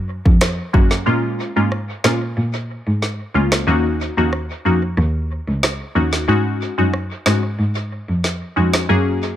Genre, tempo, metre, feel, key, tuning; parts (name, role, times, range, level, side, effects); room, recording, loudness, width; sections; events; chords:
dancehall; 92 BPM; 4/4; straight; Bb minor; A4 = 440 Hz
warm cello; bass; 0.0-9.3 s; Db2 to Bb2; -19 LUFS; equal
afro-pop drum kit; drums; 0.3-8.9 s; hi-hat, kick drum, rim click, snare drum; -19 LUFS; equal; dub echo
wavetable chord stab; accompaniment; 0.7-9.3 s; Ab3 to Ab4; -19 LUFS; left 2 dB
little or no reverb; echo-heavy mix; -16 LUFS; side -11 dB against mid
0.0-1.1 A section; 1.1-9.4 B section
break 1.1-9.4
0.0 Gbadd9; 1.1 Bbm7; 3.7 Ebm7; 6.3 Ab7sus4